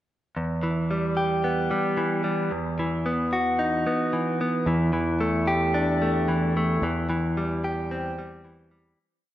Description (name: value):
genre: post-rock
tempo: 111 BPM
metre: 4/4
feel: straight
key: E minor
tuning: A4 = 440 Hz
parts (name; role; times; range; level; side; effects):
- direct-recorded clean electric guitar; arpeggios; 0.4-9.0 s; E2 to G4; -24 LUFS; equal; slapback echo
- growling fingered electric bass; bass; 4.7-8.9 s; E2; -26 LUFS; equal; overdrive
room: moderate lush hall reverb, RT60 2.7 s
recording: none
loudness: -23 LUFS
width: side -13 dB against mid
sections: 0.4-9.0 A section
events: fade-out 6.8-9.0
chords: 0.4 Em; 2.5 B/E; 4.7 Dsus4/E; 6.8 C/E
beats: | 0.36 0.90 1.43 1.97 | 2.51 3.05 3.59 4.13 | 4.67 5.20 5.74 6.28 | 6.82 7.36 7.90 8.44